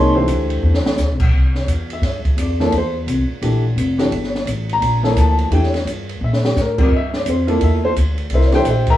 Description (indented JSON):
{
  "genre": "modal jazz",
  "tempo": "172 BPM",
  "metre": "4/4",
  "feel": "swing 63% on 8ths",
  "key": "C mixolydian",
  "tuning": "A4 = 440 Hz",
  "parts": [
    { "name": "clear upright piano", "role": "accompaniment", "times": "0.0-9.0 s", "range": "E3 to Bb5", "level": "-19 LUFS", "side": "left 1 dB", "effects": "none" },
    { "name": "upright bass", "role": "bass", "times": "0.0-9.0 s", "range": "F1 to Bb2", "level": "-17 LUFS", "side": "equal", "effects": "none" },
    { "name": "open jazz drum kit", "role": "drums", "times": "0.3-8.9 s", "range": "crash cymbal, hi-hat, kick drum, ride cymbal, snare drum", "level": "-22 LUFS", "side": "equal", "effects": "none" }
  ],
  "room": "wet small room reverb, RT60 0.5 s",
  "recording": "heard from further back in the room, small room ambience",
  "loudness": "-15 LUFS",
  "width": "side -13 dB against mid",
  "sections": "0.0-1.3 A section; 1.3-9.0 A section",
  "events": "drum fill 0.6-1.0, 6.2-6.6",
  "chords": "0.0 C7"
}